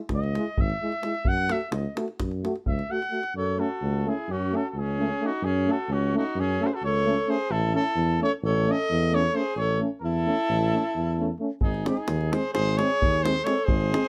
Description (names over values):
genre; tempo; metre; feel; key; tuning
balkan folk, Balkan brass band; 261 BPM (eighths); 9/8; straight; F# dorian sharp4; A4 = 445 Hz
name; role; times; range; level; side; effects
mellow trumpet; melody; 0.1-14.1 s; F#4 to F#5; -31 LUFS; equal; none
mellow tuba; bass; 0.1-13.9 s; G#1 to F#2; -30 LUFS; equal; none
davul; percussion; 0.1-3.3, 11.6-14.1 s; none; -30 LUFS; equal; none
warm euphonium; accompaniment; 0.4-14.0 s; B#3 to F#4; -33 LUFS; equal; none
warm trombone; accompaniment; 0.4-14.0 s; G#3 to A3; -34 LUFS; equal; none
warm alto saxophone; second line; 3.4-14.1 s; C#4 to A4; -33 LUFS; equal; none
room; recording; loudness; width
light reverb; close, detailed microphones; -26 LUFS; mono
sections
0.0-3.3 A section; 3.3-14.1 B section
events
trumpet solo 0.0-3.3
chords
0.0 C#m; 1.3 F#m; 7.5 A; 11.6 G#